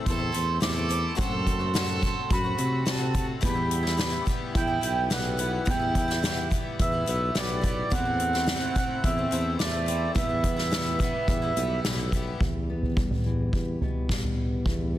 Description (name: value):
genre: indie folk with a building arrangement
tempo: 107 BPM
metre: 4/4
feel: straight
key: E minor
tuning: A4 = 441 Hz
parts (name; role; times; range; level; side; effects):
- felt-muted upright piano; accompaniment; 0.0-12.4 s; F#1 to C5; -40 LUFS; right 2 dB; none
- picked twelve-string acoustic guitar; accompaniment; 0.0-12.4 s; E2 to F#4; -35 LUFS; left 6 dB; none
- mellow accordion; melody; 0.1-11.8 s; D5 to D6; -30 LUFS; right 2 dB; digital delay
- dark fiddle; second line; 0.1-11.8 s; A3 to A4; -34 LUFS; right 3 dB; none
- mellow tuba; bass; 0.1-15.0 s; B1 to C3; -30 LUFS; equal; none
- soft-mallet drum kit; drums; 0.1-14.8 s; hi-hat, kick drum, snare drum, toms; -28 LUFS; equal; none
- fingerpicked steel-string acoustic guitar; accompaniment; 12.4-15.0 s; E2 to G4; -33 LUFS; left 2 dB; none
room: light reverb, small room ambience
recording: dense, heavily limited modern master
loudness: -24 LUFS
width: side -13 dB against mid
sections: 0.0-12.4 A section; 12.4-15.0 B section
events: none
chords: 0.0 Am/E; 1.2 F#dim; 3.4 Em; 7.9 Am/E; 10.2 Em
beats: 0.06 0.62 | 1.18 1.74 2.30 2.86 | 3.42 3.98 4.54 5.10 | 5.67 6.23 6.79 7.35 | 7.91 8.47 9.03 9.59 | 10.15 10.72 11.28 11.84 | 12.40 12.96 13.53 14.09 | 14.65